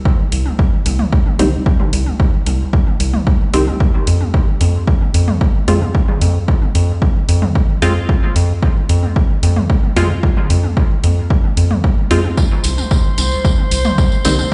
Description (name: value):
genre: dub techno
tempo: 112 BPM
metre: 4/4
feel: straight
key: C minor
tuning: A4 = 440 Hz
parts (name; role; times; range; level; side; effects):
- electronic kick drum; drums; 0.1-14.5 s; none; -16 LUFS; equal; overdrive
- electronic toms; percussion; 0.1-14.5 s; none; -26 LUFS; equal; overdrive, sidechain pumping on toms, dub echo
- round analog bass; bass; 0.3-14.4 s; C2 to F2; -16 LUFS; equal; sidechain pumping
- electronic hi-hat; drums; 0.3-14.4 s; none; -28 LUFS; equal; overdrive
- filtered dub chord stab; stabs; 1.4-14.4 s; Eb3 to F4; -24 LUFS; equal; chorus, phaser, sidechain pumping, dub echo
- tambourine; percussion; 12.4-14.5 s; none; -26 LUFS; equal; none
- drifting glass-harmonics texture; texture; 12.6-14.5 s; C5; -25 LUFS; equal; chorus, built-in reverb, sidechain pumping
room: digital ambience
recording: played on a big sound system in a bare room, stone room reverb, nothing above 10.7 kHz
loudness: -15 LUFS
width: mono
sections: 0.0-14.5 A section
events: none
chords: none